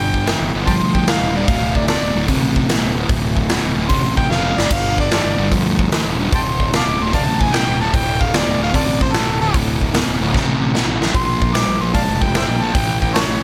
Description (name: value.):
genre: blues rock power trio and southern rock.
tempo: 149 BPM.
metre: 4/4.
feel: swing 68% on 8ths.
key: D minor.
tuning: A4 = 444 Hz.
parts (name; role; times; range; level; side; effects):
warm harmonica; melody; 0.0-13.4 s; F4 to D6; -24 LUFS; equal; overdrive, slapback echo.
fuzz guitar; riff; 0.0-13.4 s; D2 to G#3; -22 LUFS; equal; distortion.
fuzz fingered electric bass; bass; 0.0-13.4 s; D1 to D2; -24 LUFS; equal; overdrive.
big rock drum kit; drums; 0.1-13.3 s; crash cymbal, hi-hat, kick drum, snare drum; -22 LUFS; equal; none.
room: light reverb.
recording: none.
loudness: -17 LUFS.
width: mono.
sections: 0.0-13.4 A section.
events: drum fill 4.3-4.7, 10.3-11.1.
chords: 0.0 G5; 1.5 D5; 4.7 G5; 6.3 D5; 11.1 Bb5; 12.8 A5.